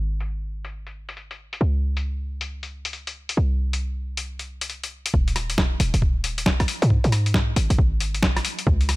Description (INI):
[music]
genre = UK garage, two-step garage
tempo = 136 BPM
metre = 4/4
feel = swing 63% on 16ths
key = unclear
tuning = A4 = 438 Hz
[part]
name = short 808-style bass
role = bass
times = 0.0-9.0 s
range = Eb1 to Ab2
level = -23 LUFS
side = equal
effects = none
[part]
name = boom bap sampler-style drum kit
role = drums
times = 0.2-9.0 s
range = hi-hat, rim click, snare drum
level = -25 LUFS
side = left 1 dB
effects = none
[part]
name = electronic kick drum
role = drums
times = 5.1-8.8 s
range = none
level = -22 LUFS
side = equal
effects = none
[sound]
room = digital ambience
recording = low-pass filter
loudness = -21 LUFS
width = side -21 dB against mid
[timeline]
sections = 0.0-5.1 A section; 5.1-9.0 B section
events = filter sweep 0.0-5.1; drop 5.1-9.0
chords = none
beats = 0.28 0.73 1.17 | 1.61 2.05 2.49 2.93 | 3.37 3.81 4.25 4.70 | 5.14 5.58 6.02 6.46 | 6.90 7.34 7.79 8.23 | 8.67